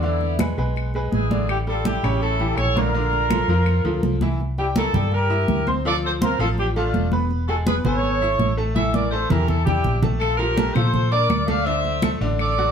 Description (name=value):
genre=latin, salsa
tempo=165 BPM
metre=4/4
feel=straight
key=D minor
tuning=A4 = 440 Hz
part: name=mellow horn section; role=melody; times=0.0-12.7 s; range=B3 to F5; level=-23 LUFS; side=equal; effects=none
part: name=bright upright piano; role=accompaniment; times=0.0-12.7 s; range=C#3 to E6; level=-26 LUFS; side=left 1 dB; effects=none
part: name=hollow-body short-scale fingered electric bass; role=bass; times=0.0-12.7 s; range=E1 to Bb2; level=-23 LUFS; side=equal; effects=none
part: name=congas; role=percussion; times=0.0-12.7 s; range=none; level=-25 LUFS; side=right 1 dB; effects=none
part: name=claves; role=percussion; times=0.4-3.8, 10.2-12.6 s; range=none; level=-35 LUFS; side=left 5 dB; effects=none
room=wet studio reverb, RT60 0.9 s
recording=heard from further back in the room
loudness=-18 LUFS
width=side -7 dB against mid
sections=0.0-4.4 A section; 4.4-12.7 B section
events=drum fill 8.8-10.2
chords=0.0 E7; 1.5 A7sus4; 2.2 A7; 2.9 Bbmaj7; 4.4 C7; 5.9 Dm7; 7.3 E; 8.8 A5; 10.2 Bbmaj7; 11.7 D7